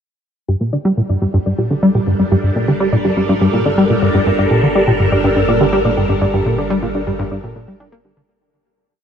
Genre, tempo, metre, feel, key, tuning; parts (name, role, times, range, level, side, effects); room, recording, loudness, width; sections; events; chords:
ambient, sequencer-driven space music; 123 BPM; 4/4; straight; G minor; A4 = 440 Hz
phased string machine; sustained chords; 1.2-8.3 s; G3 to Bb4; -19 LUFS; equal; ensemble chorus, phaser
soft round pluck; arpeggios; 0.5-8.2 s; G4 to G5; -22 LUFS; moving between left 5 dB and right 4 dB; chorus, auto-pan, tape echo
plucky analog bass; riff; 0.5-8.2 s; G2 to D4; -15 LUFS; equal; lush chorus, tape echo
analog drone; bass; 1.9-8.3 s; G1; -27 LUFS; equal; chorus
moderate huge ambient reverb, RT60 8.3 s; dark, warm production; -13 LUFS; side -8 dB against mid
0.5-8.3 A section
fade-in on string machine 0.5-8.3; fade-in on synth drone 0.5-8.3; fade-out 5.7-8.3
0.5 Gm